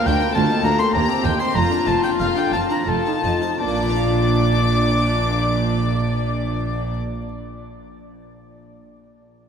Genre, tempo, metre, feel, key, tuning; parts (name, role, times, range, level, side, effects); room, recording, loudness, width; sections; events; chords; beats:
classical, baroque-style concerto movement with solo episodes; 81-106 BPM; 3/4; straight; Bb major; A4 = 440 Hz
rich chamber violin section; melody; 0.0-6.9 s; F5 to D6; -27 LUFS; left 6 dB
warm oboe; melody; 0.0-6.9 s; D5 to C6; -25 LUFS; left 1 dB
warm chamber violin section; second line; 0.0-6.9 s; F4 to D5; -29 LUFS; left 2 dB
harpsichord; accompaniment; 0.0-7.3 s; D2 to F5; -26 LUFS; left 4 dB
warm chamber viola section; accompaniment; 0.0-6.9 s; Bb3 to F4; -27 LUFS; equal
warm studio cello section; bass; 0.1-6.9 s; D2 to Bb2; -25 LUFS; right 3 dB
warm studio double bass section; bass; 0.1-6.9 s; F1 to Eb2; -25 LUFS; right 2 dB
wet cathedral reverb, RT60 6.3 s; in a vast, echoing space; -17 LUFS; side -7 dB against mid
0.0-3.6 A section; 3.6-8.0 B section
slowing down 0.0-3.6
0.0 Bb/D; 0.9 Cm7/Eb; 1.6 Bb/F; 2.9 F7; 3.6 Bb
0.35 0.94 | 1.55 2.19 2.87 | 3.60 4.34 5.08 | 5.81 6.55